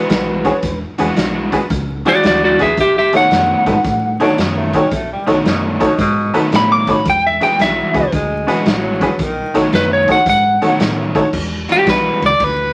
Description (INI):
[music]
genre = electric blues shuffle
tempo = 112 BPM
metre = 4/4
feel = swing 66% on 8ths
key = E mixolydian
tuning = A4 = 439 Hz
[part]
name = lightly driven lead guitar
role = melody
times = 0.0-12.7 s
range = F#4 to D6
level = -16 LUFS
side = equal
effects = none
[part]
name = overdriven semi-hollow guitar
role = riff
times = 0.0-12.3 s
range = B2 to F#4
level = -23 LUFS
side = equal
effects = spring reverb
[part]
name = fingered electric bass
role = bass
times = 0.1-12.7 s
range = E1 to A2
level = -26 LUFS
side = equal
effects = none
[part]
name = raw garage drum kit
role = drums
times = 0.1-12.6 s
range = crash cymbal, hi-hat, kick drum, ride cymbal, snare drum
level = -23 LUFS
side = equal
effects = none
[part]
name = honky-tonk upright piano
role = accompaniment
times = 0.4-11.2 s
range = D4 to D5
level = -20 LUFS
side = equal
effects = none
[part]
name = growling tenor saxophone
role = second line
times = 4.2-9.6 s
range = B2 to D4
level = -24 LUFS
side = equal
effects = none
[sound]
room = moderate studio reverb, RT60 0.6 s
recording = vinyl crackle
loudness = -15 LUFS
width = mono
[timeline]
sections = 0.0-11.3 A section; 11.3-12.7 B section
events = lead electric guitar solo 11.3-12.7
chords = 0.0 E9; 2.8 B9; 7.1 E9; 9.2 B9; 11.3 E9